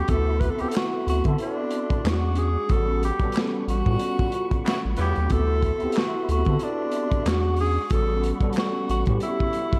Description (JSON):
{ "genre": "R&B, neo-soul", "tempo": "92 BPM", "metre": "4/4", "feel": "swing 58% on 16ths", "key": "unclear", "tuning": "A4 = 440 Hz", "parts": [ { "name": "breathy tenor saxophone", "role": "melody", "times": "0.0-9.8 s", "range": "D4 to B4", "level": "-30 LUFS", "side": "equal", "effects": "tape echo" }, { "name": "tine electric piano", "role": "accompaniment", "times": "0.0-9.8 s", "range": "G3 to A4", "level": "-32 LUFS", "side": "equal", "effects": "ensemble chorus" }, { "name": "mellow tonewheel organ", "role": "sustained chords", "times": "0.0-9.8 s", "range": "G3 to D6", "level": "-38 LUFS", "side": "equal", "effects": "fast rotary speaker, chorus vibrato" }, { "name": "round analog bass", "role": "bass", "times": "0.0-9.2 s", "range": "A1 to D3", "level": "-26 LUFS", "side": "equal", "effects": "none" }, { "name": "crunchy breakbeat drum kit", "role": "drums", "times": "0.1-9.8 s", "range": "handclaps, hi-hat, kick drum, snare drum", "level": "-29 LUFS", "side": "equal", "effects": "none" }, { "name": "clear horn section", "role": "stabs", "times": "4.7-5.2 s", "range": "C#3 to E4", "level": "-38 LUFS", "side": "equal", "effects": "none" } ], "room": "moderate lush hall reverb, RT60 1.6 s", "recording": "dreamy mix soaked in reverb", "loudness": "-24 LUFS", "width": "mono", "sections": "0.0-9.8 A section", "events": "band accent 2.7-5.3", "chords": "0.1 D13; 2.0 E13; 2.7 A13; 5.3 D13; 7.3 E13; 7.9 A13" }